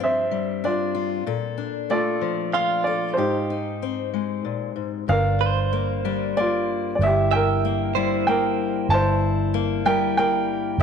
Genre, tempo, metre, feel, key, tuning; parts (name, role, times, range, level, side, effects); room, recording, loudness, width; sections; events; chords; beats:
acoustic folk-pop ballad; 95 BPM; 3/4; straight; A4 = 438 Hz
warm upright piano; melody; 0.0-10.8 s; Eb4 to A5; -23 LUFS; right 2 dB
fingerpicked steel-string acoustic guitar; accompaniment; 0.0-10.8 s; G2 to A4; -26 LUFS; left 10 dB
direct-recorded clean electric guitar; arpeggios; 2.5-10.4 s; F4 to E5; -28 LUFS; right 11 dB; tremolo
vintage muted fingered electric bass; bass; 5.1-10.8 s; G1; -24 LUFS; right 2 dB
moderate echo chamber reverb, RT60 1.7 s, studio reverb; 1960s-style stereo with parts hard left and right; -20 LUFS; side -6 dB against mid
0.0-5.1 A section; 5.1-10.8 B section
0.0 G7sus4; 1.3 Bbmaj7; 3.2 Abmaj7; 5.1 Gm7; 7.0 C7/G
0.00 0.64 | 1.27 1.90 2.54 | 3.17 3.81 4.45 | 5.09 5.73 6.36 | 7.00 7.63 8.26 | 8.89 9.52 10.15 | 10.79